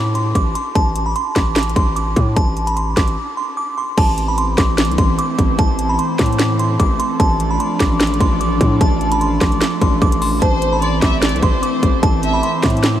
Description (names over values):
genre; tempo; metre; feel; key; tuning
hip hop, trap; 149 BPM; 4/4; half-time; A minor; A4 = 435 Hz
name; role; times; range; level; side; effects
glassy synth bell; melody; 0.0-13.0 s; A5 to D6; -20 LUFS; right 1 dB; chorus, diffuse ambient delay
distorted 808-style bass; bass; 0.0-13.0 s; A1 to A2; -19 LUFS; equal; distortion
trap drum kit; drums; 0.1-12.9 s; crash cymbal, handclaps, hi-hat, kick drum, snare drum; -18 LUFS; equal; none
airy breathy pad; sustained chords; 4.0-13.0 s; E3 to D4; -21 LUFS; equal; chorus
warm studio violin section; second line; 10.4-12.4 s; C5 to E5; -23 LUFS; left 2 dB; diffuse ambient delay
room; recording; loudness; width
moderate huge ambient reverb, RT60 8.4 s; dreamy mix soaked in reverb; -14 LUFS; side -11 dB against mid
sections
0.0-4.0 A section; 4.0-13.0 B section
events
break 3.2-4.0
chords
0.0 Am; 7.2 F6/A; 10.4 Am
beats
0.35 | 0.75 1.16 1.56 1.96 | 2.37 2.77 3.17 3.57 | 3.98 4.38 4.78 5.18 | 5.59 5.99 6.39 6.79 | 7.20 7.60 8.00 8.40 | 8.81 9.21 9.61 10.02 | 10.42 10.82 11.22 11.63 | 12.03 12.43 12.84